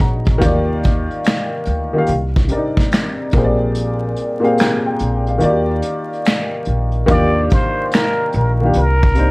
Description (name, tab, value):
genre	lo-fi hip hop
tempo	72 BPM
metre	4/4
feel	swing 65% on 16ths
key	Eb major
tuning	A4 = 442 Hz
part	dark upright piano	accompaniment	0.0-9.3 s	Bb2 to Bb5	-18 LUFS	left 1 dB	plate reverb
part	upright bass	bass	0.0-9.3 s	Bb1 to Eb2	-18 LUFS	equal	none
part	vintage brush drum kit	drums	0.0-9.3 s	finger snaps, hi-hat, kick drum, snare drum	-17 LUFS	equal	none
part	trumpet with plunger mute	melody	7.1-9.3 s	Bb4 to D5	-19 LUFS	equal	plate reverb
room	moderate studio reverb, RT60 0.6 s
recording	vinyl crackle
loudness	-14 LUFS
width	side -26 dB against mid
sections	0.0-7.1 A section; 7.1-9.3 B section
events	kick muted 3.8-7.1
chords	0.4 Ebmaj7; 2.1 Cm7; 3.3 Bb13; 5.4 Ebmaj9; 8.8 Cm7